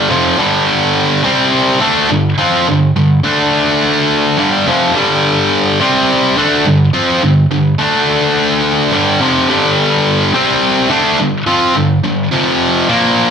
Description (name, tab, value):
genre	rock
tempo	106 BPM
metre	4/4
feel	straight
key	G minor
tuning	A4 = 440 Hz
part	high-gain distorted guitar	solo	0.0-13.3 s	F2 to F4	-10 LUFS	equal	distortion, slapback echo
room	moderate studio reverb, RT60 1.0 s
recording	none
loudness	-10 LUFS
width	side -7 dB against mid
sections	0.0-13.3 A section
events	none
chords	0.0 G5; 1.3 C5; 1.8 G5; 3.2 D5; 4.4 G5; 5.8 C5; 6.4 G5; 7.8 D5; 8.9 G5; 10.3 C5; 10.9 G5; 12.3 F5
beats	0.40 0.97 1.54 | 2.11 2.67 3.25 3.81 | 4.38 4.95 5.52 6.09 | 6.66 7.22 7.79 8.36 | 8.93 9.50 10.06 10.63 | 11.20 11.77 12.33 12.90